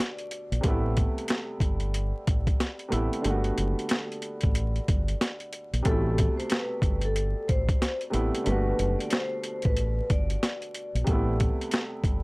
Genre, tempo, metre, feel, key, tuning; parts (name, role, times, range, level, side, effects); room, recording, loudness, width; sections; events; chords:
hip hop, boom-bap hip-hop; 92 BPM; 4/4; swing 62% on 16ths; A dorian; A4 = 440 Hz
vibraphone with medium hard mallets; melody; 0.0-0.6, 5.9-11.0 s; A4 to D5; -34 LUFS; left 1 dB; high-pass filter, low-pass filter
warm upright piano; accompaniment; 0.0-12.2 s; B2 to F#4; -32 LUFS; right 1 dB; high-pass filter, low-pass filter
boom bap sampler-style drum kit; drums; 0.0-12.2 s; hi-hat, kick drum, snare drum; -26 LUFS; equal; overdrive
deep dub fingered electric bass; bass; 0.5-12.2 s; F#1 to Bb1; -28 LUFS; equal
little or no reverb; dry, gritty hardware recording, vinyl crackle; -25 LUFS; side -26 dB against mid
0.0-12.2 A section
0.0 Gmaj7; 0.6 Am7; 3.2 Gmaj7; 5.9 Am7; 8.5 Gmaj7; 11.1 Am7